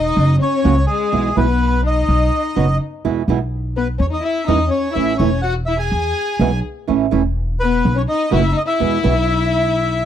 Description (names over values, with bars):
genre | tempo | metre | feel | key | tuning
tango | 125 BPM | 4/4 | rubato | E major | A4 = 438 Hz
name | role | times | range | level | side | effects
bandoneon | melody | 0.0-10.1 s | G#4 to G#5 | -21 LUFS | right 1 dB | none
warm violin | second line | 0.0-10.1 s | G#3 to G#4 | -21 LUFS | left 8 dB | none
upright bass | bass | 0.0-10.1 s | E1 to E2 | -18 LUFS | equal | none
flamenco guitar | accompaniment | 0.6-9.1 s | B2 to F#4 | -19 LUFS | right 9 dB | none
room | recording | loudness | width
studio ambience | dry, close 1970s-style studio recording | -15 LUFS | side -10 dB against mid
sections
0.0-10.1 A section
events
none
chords
0.2 F#5; 1.1 E/B; 2.1 B; 3.0 E; 4.0 C#m/E; 5.0 A; 5.9 E; 6.9 A; 7.8 B; 8.8 E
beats
0.17 0.64 | 1.12 1.60 2.08 2.56 | 3.04 3.52 4.00 4.48 | 4.96 5.44 5.92 6.40 | 6.88 7.36 7.84 8.32 | 8.80 9.28 9.76